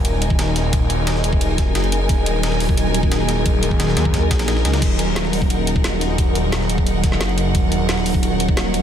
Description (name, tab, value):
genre	dark technical drum and bass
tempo	176 BPM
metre	4/4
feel	straight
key	Eb minor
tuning	A4 = 439 Hz
part	metallic inharmonic drone	sustained chords	0.0-8.8 s	Gb3 to Db5	-24 LUFS	right 1 dB	chorus, built-in reverb, sidechain pumping
part	phased detuned saw bass	bass	0.0-8.8 s	Eb1 to Eb2	-20 LUFS	equal	phaser, overdrive, sidechain pumping
part	breakbeat sampler-style drum kit	drums	0.0-8.8 s	hi-hat, ride cymbal, snare drum	-30 LUFS	right 1 dB	high-pass filter on cymbals, high-pass filter on snare, high-pass filter on hats
part	drum and bass drum kit	drums	0.0-8.8 s	crash cymbal, hi-hat, snare drum	-26 LUFS	left 1 dB	none
part	clear symphonic string section	texture	0.0-8.8 s	Eb4 to Ab5	-25 LUFS	left 1 dB	sidechain pumping
part	electronic kick drum	drums	0.3-8.6 s	none	-19 LUFS	equal	none
room	light reverb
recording	none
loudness	-16 LUFS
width	side -9 dB against mid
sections	0.0-8.8 A section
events	none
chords	0.0 Ebm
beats	0.05 0.39 | 0.73 1.07 1.41 1.75 | 2.09 2.43 2.77 3.12 | 3.46 3.80 4.14 4.48 | 4.82 5.16 5.50 5.84 | 6.18 6.53 6.87 7.21 | 7.55 7.89 8.23 8.57